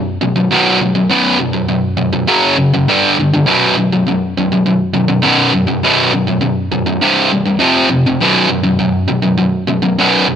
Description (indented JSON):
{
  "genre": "metal",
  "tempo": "101 BPM",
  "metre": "4/4",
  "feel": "straight",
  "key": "B minor",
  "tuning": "A4 = 440 Hz",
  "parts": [
    { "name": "distorted electric guitar", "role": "solo", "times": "0.0-10.4 s", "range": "B1 to G3", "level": "-11 LUFS", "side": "equal", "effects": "overdrive" }
  ],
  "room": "digital ambience",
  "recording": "none",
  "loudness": "-11 LUFS",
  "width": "side -8 dB against mid",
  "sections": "0.0-10.4 A section",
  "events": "none",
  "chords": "0.0 B5; 2.3 F#5; 2.9 G5; 3.5 B5; 7.0 C5; 7.6 F5; 8.2 B5",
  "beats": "0.49 | 1.09 1.68 2.28 2.87 | 3.46 4.06 4.65 5.24 | 5.83 6.42 7.02 7.61 | 8.20 8.79 9.38 9.97"
}